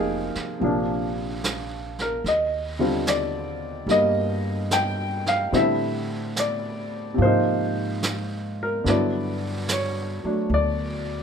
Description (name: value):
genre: jazz ballad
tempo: 73 BPM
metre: 4/4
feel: swing 68% on 8ths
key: unclear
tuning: A4 = 440 Hz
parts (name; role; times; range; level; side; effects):
- clear baby grand piano; accompaniment; 0.0-11.2 s; C3 to G5; -23 LUFS; equal; none
- upright bass; bass; 0.0-11.2 s; F1 to A2; -29 LUFS; equal; none
- vintage brush drum kit; drums; 0.4-11.2 s; brushed snare drum, hi-hat, snare drum; -31 LUFS; right 3 dB; none
room: light reverb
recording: minimal, uncompressed stereo recording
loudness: -22 LUFS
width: side -7 dB against mid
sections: 0.0-11.2 A section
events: none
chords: 0.0 Fm7; 0.6 Bb9; 2.2 Ebmaj7; 5.5 Am7; 7.2 G#add9; 8.9 Gmaj9#11